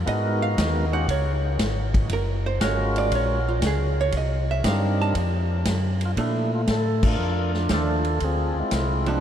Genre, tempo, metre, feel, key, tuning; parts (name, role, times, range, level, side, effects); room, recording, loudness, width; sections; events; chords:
soul jazz organ trio; 118 BPM; 4/4; swing 69% on 8ths; A4 = 442 Hz
mellow tonewheel organ; bass; 0.0-9.2 s; Gb1 to Bb2; -24 LUFS; left 1 dB; overdrive, chorus vibrato, slow rotary speaker
percussive tonewheel organ; melody; 0.1-9.2 s; G3 to Bb4; -27 LUFS; equal; slow rotary speaker, ping-pong delay
archtop guitar, miked and amplified; accompaniment; 0.1-9.2 s; F3 to A5; -29 LUFS; right 5 dB; lush chorus
vintage drum kit; drums; 0.1-9.1 s; crash cymbal, hi-hat, kick drum, ride cymbal, snare drum; -28 LUFS; equal
moderate huge ambient reverb, RT60 7.4 s; dreamy mix soaked in reverb; -21 LUFS; side -9 dB against mid
0.0-6.2 A section; 6.2-9.2 B section
hollow-body jazz guitar solo 0.0-6.2; band accent 6.9
0.1 Abm9; 1.1 Db5; 2.1 Gbmaj9; 4.1 Cm9; 5.2 F; 6.2 Bbmaj7; 8.2 Dm7b5